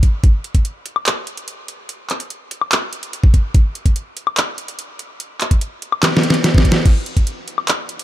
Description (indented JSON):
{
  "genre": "future bass",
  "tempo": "145 BPM",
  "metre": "4/4",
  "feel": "half-time",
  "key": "none",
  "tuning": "none",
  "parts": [
    { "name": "dubstep drum kit", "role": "drums", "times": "0.0-8.0 s", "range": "crash cymbal, handclaps, hi-hat, snare drum, woodblock", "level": "-18 LUFS", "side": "equal", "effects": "none" },
    { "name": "electronic kick drum", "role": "drums", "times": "0.0-0.6, 3.2-7.2 s", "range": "none", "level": "-12 LUFS", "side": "equal", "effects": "none" }
  ],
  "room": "little or no reverb",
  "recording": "dark, warm production",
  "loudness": "-15 LUFS",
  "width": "side -14 dB against mid",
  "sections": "0.0-8.0 A section",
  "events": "drum fill 6.0-6.9",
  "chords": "none"
}